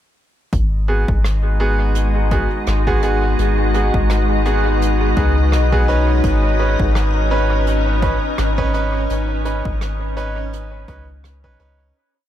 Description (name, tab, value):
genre	ambient dub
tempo	84 BPM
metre	4/4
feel	swing 56% on 16ths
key	G# minor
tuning	A4 = 437 Hz
part	soft additive organ-like pad	sustained chords	1.5-12.0 s	G#3 to B4	-22 LUFS	left 1 dB	ensemble chorus, built-in reverb
part	soft dub sub bass	bass	0.5-11.9 s	G#1 to C#2	-18 LUFS	equal	tube saturation
part	electronic kick drum	drums	0.5-11.6 s	none	-22 LUFS	equal	overdrive
part	soft brush drum kit	drums	0.5-11.8 s	hi-hat, rim click	-32 LUFS	right 2 dB	dub echo
part	drifting glass-harmonics texture	texture	1.1-12.0 s	D#4 to D#5	-29 LUFS	left 6 dB	chorus, built-in reverb
part	bright upright piano	stabs	0.9-11.9 s	B3 to B4	-23 LUFS	right 3 dB	dub echo
room	light reverb, small room reverb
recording	none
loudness	-15 LUFS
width	side -11 dB against mid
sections	0.5-12.0 groove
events	fade-out 8.1-12.0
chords	0.5 G#m7